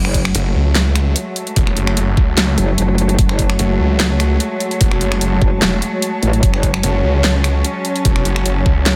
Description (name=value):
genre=heavy wobble dubstep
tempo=148 BPM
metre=4/4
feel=swing 53% on 16ths, half-time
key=F# minor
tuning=A4 = 442 Hz
part: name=warm studio string section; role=sustained chords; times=0.0-9.0 s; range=F#3 to C#4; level=-25 LUFS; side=equal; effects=sidechain pumping
part: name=metallic wobble bass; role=bass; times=0.0-6.8 s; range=F#1 to A1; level=-19 LUFS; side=equal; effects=chorus, overdrive
part: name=dubstep drum kit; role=drums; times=0.0-8.9 s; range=finger snaps, handclaps, hi-hat, snare drum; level=-22 LUFS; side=equal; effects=none
part: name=ethereal airy pad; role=texture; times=0.3-9.0 s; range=F#4 to A5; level=-28 LUFS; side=equal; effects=ensemble chorus, built-in reverb, sidechain pumping
part: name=electronic kick drum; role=drums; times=0.1-8.7 s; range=none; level=-17 LUFS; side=equal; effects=overdrive
part: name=snarling distorted saw bass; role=bass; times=0.3-9.0 s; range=E1 to C#2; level=-18 LUFS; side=equal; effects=distortion, overdrive
room=light reverb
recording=none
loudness=-16 LUFS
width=mono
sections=0.0-9.0 A section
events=none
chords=0.0 F#madd9